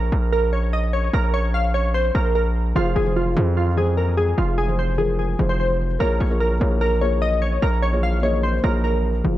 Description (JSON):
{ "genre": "hip hop, trap", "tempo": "148 BPM", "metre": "4/4", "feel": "half-time", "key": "unclear", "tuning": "A4 = 439 Hz", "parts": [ { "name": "glassy digital keys", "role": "melody", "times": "0.0-9.4 s", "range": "F4 to F5", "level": "-23 LUFS", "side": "equal", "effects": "chorus, low-pass filter, tape echo" }, { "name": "distorted 808-style bass", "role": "bass", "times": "0.0-9.4 s", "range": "F1 to F2", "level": "-20 LUFS", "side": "equal", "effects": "distortion" }, { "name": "felt-muted upright piano", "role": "accompaniment", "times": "2.8-9.4 s", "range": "F3 to Eb5", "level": "-26 LUFS", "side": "equal", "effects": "low-pass filter" } ], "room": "small room ambience", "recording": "echo-heavy mix", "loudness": "-18 LUFS", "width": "side -14 dB against mid", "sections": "0.0-9.2 A section", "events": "none", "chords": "0.0 Bbm; 2.8 Fm; 6.0 Bbm7", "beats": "0.33 0.73 | 1.14 1.54 1.95 2.35 | 2.76 3.16 3.57 3.97 | 4.38 4.78 5.19 5.59 | 6.00 6.41 6.81 7.22 | 7.62 8.03 8.43 8.84 | 9.24" }